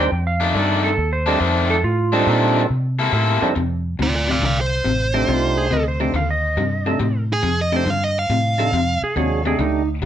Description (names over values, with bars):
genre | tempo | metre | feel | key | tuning
blues | 139 BPM | 4/4 | swing 68% on 8ths | F mixolydian | A4 = 436 Hz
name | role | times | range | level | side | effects
clean lap steel guitar | second line | 0.0-2.7, 5.3-9.9 s | Eb4 to G5 | -23 LUFS | right 3 dB | none
percussive tonewheel organ | accompaniment | 0.0-9.8 s | F2 to C5 | -22 LUFS | right 4 dB | overdrive, stopped rotary speaker
overdriven electric guitar | riff | 0.0-10.1 s | F2 to A4 | -22 LUFS | left 4 dB | none
vintage muted fingered electric bass | bass | 0.0-10.1 s | A1 to C3 | -21 LUFS | equal | none
dark smooth lead guitar | melody | 4.0-9.0 s | F4 to F5 | -22 LUFS | right 2 dB | overdrive
room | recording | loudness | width
light reverb | none | -17 LUFS | side -10 dB against mid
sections
0.0-3.6 A section; 3.6-10.1 B section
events
electric slide guitar solo 0.0-3.6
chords
0.1 F13; 2.7 C13; 3.6 F13